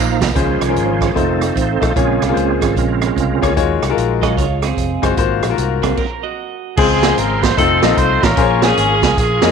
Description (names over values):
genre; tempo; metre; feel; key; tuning
uptempo gospel; 150 BPM; 4/4; swing 64% on 8ths; Db major; A4 = 440 Hz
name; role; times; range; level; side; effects
bright tonewheel organ; sustained chords; 0.0-9.5 s; Db3 to Db6; -20 LUFS; right 11 dB; chorus vibrato, fast rotary speaker
dark French horn section; sustained chords; 0.0-6.0 s; Db3 to F5; -29 LUFS; left 1 dB; none
fingered electric bass; bass; 0.0-9.5 s; F1 to F2; -20 LUFS; equal; none
swinging big-band drum kit; drums; 0.2-9.5 s; crash cymbal, hi-hat, kick drum, rim click, snare drum; -19 LUFS; right 3 dB; none
clear grand piano; accompaniment; 0.4-9.5 s; Ab2 to Eb5; -18 LUFS; left 13 dB; none
twelve-string electric guitar; second line; 4.2-6.8 s; C4 to Eb5; -23 LUFS; right 12 dB; none
mellow horn section; melody; 6.8-9.5 s; C4 to C5; -16 LUFS; equal; none
room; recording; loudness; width
light reverb, small room ambience; 1960s-style stereo with parts hard left and right; -13 LUFS; side -6 dB against mid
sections
0.4-6.8 A section; 6.8-9.5 B section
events
tonewheel organ solo 0.4-6.8; stop 6.0-6.8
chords
0.4 Dbmaj7; 1.2 F7; 2.0 Bbm7; 3.6 Ebm11; 5.2 Ab13; 6.8 Dbmaj7; 7.6 F7; 8.4 Bbm7